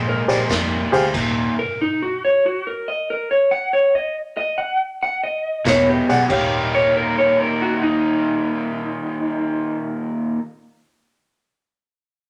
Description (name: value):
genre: electric blues shuffle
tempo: 93 BPM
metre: 4/4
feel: swing 68% on 8ths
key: Eb mixolydian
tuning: A4 = 440 Hz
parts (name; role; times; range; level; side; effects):
- electric guitar through a small old amp; melody; 0.0-10.4 s; Eb4 to Gb5; -22 LUFS; equal; none
- raw garage guitar; riff; 0.0-1.5, 5.6-10.4 s; Eb2 to Eb4; -24 LUFS; equal; overdrive
- vintage muted fingered electric bass; bass; 0.0-1.5, 5.7-10.3 s; Eb1 to F2; -30 LUFS; equal; none
- warm upright piano; accompaniment; 0.3-1.0, 6.1-10.4 s; G4 to F#5; -23 LUFS; equal; none
- raw garage drum kit; drums; 0.3-1.3, 5.7-6.5 s; crash cymbal, hi-hat, kick drum, snare drum; -29 LUFS; equal; none
room: moderate studio reverb, RT60 0.9 s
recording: none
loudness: -20 LUFS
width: mono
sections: 0.0-6.3 A section; 6.3-8.9 B section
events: none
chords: 0.0 Bb13; 1.1 Eb5; 5.7 E9; 6.3 Eb9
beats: 0.50 | 1.14 1.79 2.43 3.08 | 3.72 4.37 5.01 5.66 | 6.30 6.95 7.59 8.24